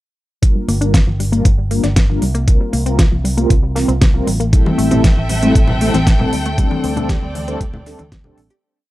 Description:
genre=nu-disco, nu disco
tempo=117 BPM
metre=4/4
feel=straight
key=G dorian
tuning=A4 = 439 Hz
part: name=mellow synth brass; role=accompaniment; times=0.4-8.4 s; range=G3 to Bb4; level=-20 LUFS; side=equal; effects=chorus, phaser, sidechain pumping, tape echo
part: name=wide unison pluck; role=arpeggios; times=0.4-8.6 s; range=E3 to A4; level=-23 LUFS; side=left 2 dB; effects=sidechain pumping, tape echo
part: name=electronic kick drum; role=drums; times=0.4-8.2 s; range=none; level=-13 LUFS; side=equal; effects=none
part: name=pop drum kit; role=drums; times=0.4-8.6 s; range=hi-hat, snare drum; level=-22 LUFS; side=equal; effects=none
part: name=fingered electric bass with an envelope filter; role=bass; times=0.7-8.5 s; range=G1 to D2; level=-19 LUFS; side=equal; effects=tube saturation
part: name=warm chamber string section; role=sustained chords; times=4.5-8.6 s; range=C4 to G5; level=-23 LUFS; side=equal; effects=sidechain pumping
part: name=congas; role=percussion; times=4.7-8.3 s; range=none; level=-23 LUFS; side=left 1 dB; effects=none
room=little or no reverb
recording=dry, gritty hardware recording, transformer saturation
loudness=-12 LUFS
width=side -16 dB against mid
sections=0.4-8.6 groove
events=filter sweep on analog polysynth 0.4-8.6; fade-out 5.9-8.6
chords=0.4 Gm7; 2.5 C7sus4; 4.5 Am7; 6.6 D7sus4

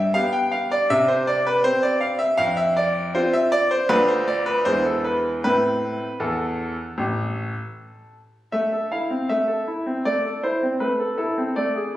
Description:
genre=classical-period piano sonatina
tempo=79 BPM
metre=4/4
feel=straight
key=A minor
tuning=A4 = 438 Hz
part: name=bright grand piano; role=solo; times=0.0-12.0 s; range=A1 to G5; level=-20 LUFS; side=equal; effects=none
room=wet recital hall reverb, RT60 1.6 s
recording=recorded on a phone in the room, studio reverb, compression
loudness=-20 LUFS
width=side -14 dB against mid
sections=0.0-8.5 A section; 8.5-12.0 A section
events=none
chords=0.0 G; 0.9 C5; 2.4 F5; 3.9 Dm6; 4.7 E7; 5.4 Am

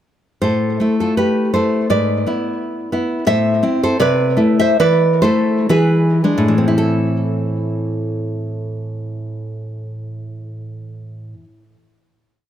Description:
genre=romantic piece for solo classical guitar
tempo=54-88 BPM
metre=2/4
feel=rubato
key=A minor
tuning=A4 = 439 Hz
part: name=nylon-string guitar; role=solo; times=0.4-11.7 s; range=G#2 to E5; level=-15 LUFS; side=equal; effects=none
room=light reverb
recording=close, detailed microphones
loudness=-14 LUFS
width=side -10 dB against mid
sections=0.4-6.8 A section; 6.8-10.9 final chord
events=slowing down 2.6-6.8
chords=0.4 A5; 1.9 E7/G#; 3.3 Am; 4.0 Am/C; 4.8 E7sus4; 5.7 E7; 6.8 Am

